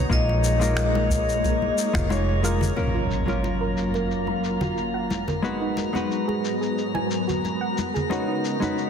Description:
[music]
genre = sunset chillout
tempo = 90 BPM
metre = 4/4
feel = straight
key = F# major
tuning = A4 = 440 Hz
[part]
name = hollow-body jazz guitar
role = accompaniment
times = 0.0-8.9 s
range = F#3 to C#5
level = -28 LUFS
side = left 1 dB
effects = auto-pan, digital delay
[part]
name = soft string machine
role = sustained chords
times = 0.0-8.9 s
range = F#2 to F#4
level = -29 LUFS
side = left 1 dB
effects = phaser, ensemble chorus
[part]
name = woody fretless electric bass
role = bass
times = 0.0-2.7 s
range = E#1 to A#1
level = -24 LUFS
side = equal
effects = analog chorus
[part]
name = drifting glass-harmonics texture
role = texture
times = 0.0-8.9 s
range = A#4 to A#5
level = -33 LUFS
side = left 2 dB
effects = chorus, built-in reverb
[part]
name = vibraphone with hard mallets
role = melody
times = 0.1-2.1 s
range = D#5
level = -28 LUFS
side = left 4 dB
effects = tape echo
[part]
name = electronic kick drum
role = drums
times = 0.1-2.1 s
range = none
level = -26 LUFS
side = equal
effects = none
[part]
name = electronic shaker and finger snaps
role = drums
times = 0.1-8.9 s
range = none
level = -35 LUFS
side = left 4 dB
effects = low-pass filter on perc, soft clipping on snare, low-pass filter on snare
[part]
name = congas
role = percussion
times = 0.3-8.7 s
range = none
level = -32 LUFS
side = left 1 dB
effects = none
[part]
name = impact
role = sound effects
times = 2.8-5.4 s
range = none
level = -30 LUFS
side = equal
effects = none
[part]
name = soft round pluck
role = arpeggios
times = 2.9-8.8 s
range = D#4 to A#5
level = -31 LUFS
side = right 5 dB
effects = wide subtle chorus, digital delay
[sound]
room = moderate concert hall reverb, RT60 1.9 s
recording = dense, heavily limited modern master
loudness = -22 LUFS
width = side -7 dB against mid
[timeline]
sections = 0.0-2.8 A section; 2.8-8.9 B section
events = impact 2.8-5.4; filter sweep on synth pluck 2.8-8.9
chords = 0.1 A#7sus4; 2.8 F#maj7; 5.4 G#m7; 7.8 C#9sus4

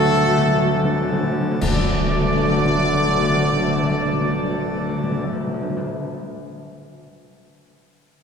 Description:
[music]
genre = classical, ceremonial fanfare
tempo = 63 BPM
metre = 3/4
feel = straight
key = D major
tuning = A4 = 440 Hz
[part]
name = clear trumpet section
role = melody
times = 0.0-5.2 s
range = A4 to D5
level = -24 LUFS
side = equal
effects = none
[part]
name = chamber organ, principal chorus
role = sustained chords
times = 0.0-5.2 s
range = F#3 to A4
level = -28 LUFS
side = left 1 dB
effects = none
[part]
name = dark French horn section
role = sustained chords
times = 0.0-5.2 s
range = A3 to F#4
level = -27 LUFS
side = left 4 dB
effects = none
[part]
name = mellow trombone section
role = sustained chords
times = 0.0-5.2 s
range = D3 to A3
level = -30 LUFS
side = right 2 dB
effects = none
[part]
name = mellow tuba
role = bass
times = 0.0-5.2 s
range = D2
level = -24 LUFS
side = right 2 dB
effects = none
[part]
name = timpani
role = percussion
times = 0.0-5.9 s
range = D3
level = -24 LUFS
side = left 1 dB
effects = none
[part]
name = clash cymbals and concert bass drum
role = percussion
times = 1.6-3.5 s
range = none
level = -27 LUFS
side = left 1 dB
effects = none
[sound]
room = wet church reverb, RT60 2.8 s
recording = recorded in a church or concert hall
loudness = -18 LUFS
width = side -6 dB against mid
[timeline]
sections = 0.0-1.6 A section; 1.6-4.5 B section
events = timpani fill 0.0-1.6; slowing down 0.0-1.6; band accent 1.6-2.6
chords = 0.0 D

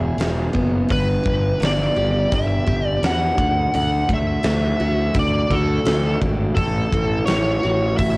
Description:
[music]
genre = quiet-loud alternative rock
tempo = 85 BPM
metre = 4/4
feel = straight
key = unclear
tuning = A4 = 440 Hz
[part]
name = smooth overdriven lead guitar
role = melody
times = 0.0-8.2 s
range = A4 to F#5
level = -22 LUFS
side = equal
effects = cassette tape
[part]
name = picked steel-string acoustic guitar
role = arpeggios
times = 0.0-8.2 s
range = G2 to G#4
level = -24 LUFS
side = equal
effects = cassette tape
[part]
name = fuzz picked electric bass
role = bass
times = 0.0-8.2 s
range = E1 to E2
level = -22 LUFS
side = equal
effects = overdrive
[part]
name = huge arena drum kit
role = drums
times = 0.2-8.2 s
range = hi-hat, kick drum, snare drum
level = -23 LUFS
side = equal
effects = cassette tape
[sound]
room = light reverb, small room ambience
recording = home recording on cassette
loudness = -17 LUFS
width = side -25 dB against mid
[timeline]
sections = 0.0-8.2 A section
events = none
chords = 0.0 E; 0.9 G; 3.4 D; 6.6 A6

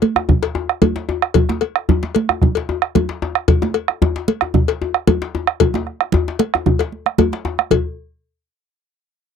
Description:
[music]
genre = west african traditional, West African drum ensemble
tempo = 113 BPM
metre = 4/4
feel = straight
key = none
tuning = none
[part]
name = congas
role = percussion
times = 0.0-8.0 s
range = none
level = -18 LUFS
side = right 7 dB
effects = none
[part]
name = cowbell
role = percussion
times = 0.0-8.0 s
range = none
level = -18 LUFS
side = left 14 dB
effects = none
[part]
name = bombo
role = percussion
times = 0.2-8.0 s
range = none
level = -17 LUFS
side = right 4 dB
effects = none
[part]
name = djembe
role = percussion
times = 0.2-8.0 s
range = none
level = -20 LUFS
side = left 5 dB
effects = none
[sound]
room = light reverb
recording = dry, close 1970s-style studio recording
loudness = -16 LUFS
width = side -7 dB against mid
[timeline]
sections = 0.0-7.7 A section; 7.7-9.4 B section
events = none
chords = none

